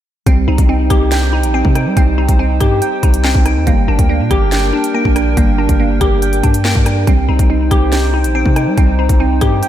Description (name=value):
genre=hip hop, drill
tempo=141 BPM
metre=4/4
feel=half-time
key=C minor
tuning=A4 = 440 Hz
part: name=soft electric-piano-like synth keys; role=accompaniment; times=0.3-9.7 s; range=G3 to G5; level=-19 LUFS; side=right 2 dB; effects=chorus, low-pass filter
part: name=hollow soft pad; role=sustained chords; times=0.7-9.7 s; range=D4 to G5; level=-22 LUFS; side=right 1 dB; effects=chorus
part: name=glassy wavetable pluck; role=arpeggios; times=0.3-9.7 s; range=Bb3 to G5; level=-20 LUFS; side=left 2 dB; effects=chorus, low-pass filter, diffuse ambient delay
part: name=long sustained 808-style bass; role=bass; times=0.3-9.6 s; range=G1 to G3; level=-15 LUFS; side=equal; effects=none
part: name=drill drum kit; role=drums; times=0.3-9.7 s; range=handclaps, hi-hat, kick drum, rim click, snare drum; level=-15 LUFS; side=equal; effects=none
room=light reverb, digital ambience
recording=none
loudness=-11 LUFS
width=side -11 dB against mid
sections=0.3-9.7 A section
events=none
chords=0.3 Cm; 3.7 Gm; 7.1 Cm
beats=| 0.27 0.69 1.12 1.54 | 1.97 2.39 2.82 3.24 | 3.67 4.09 4.52 4.95 | 5.37 5.80 6.22 6.65 | 7.07 7.50 7.92 8.35 | 8.78 9.20 9.63